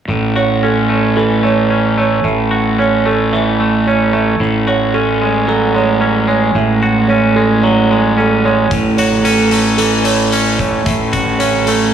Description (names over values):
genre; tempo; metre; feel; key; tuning
post-rock; 111 BPM; 4/4; straight; A major; A4 = 440 Hz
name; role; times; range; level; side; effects
twangy electric guitar; arpeggios; 0.1-11.9 s; A2 to F#4; -15 LUFS; left 2 dB; tape echo, slapback echo
fuzz fingered electric bass; bass; 0.1-11.9 s; A1; -14 LUFS; right 2 dB; overdrive
felt-muted upright piano; arpeggios; 0.4-11.9 s; A4 to E5; -19 LUFS; right 7 dB; tape echo, slapback echo
oversized low-tuned drum kit; drums; 8.7-11.8 s; hi-hat, kick drum; -19 LUFS; left 1 dB; none
room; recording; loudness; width
moderate scoring stage reverb, RT60 1.7 s, studio ambience; big arena sound; -11 LUFS; side -8 dB against mid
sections
0.1-11.9 A section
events
none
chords
0.1 A6; 4.4 F#madd9/A; 8.7 A6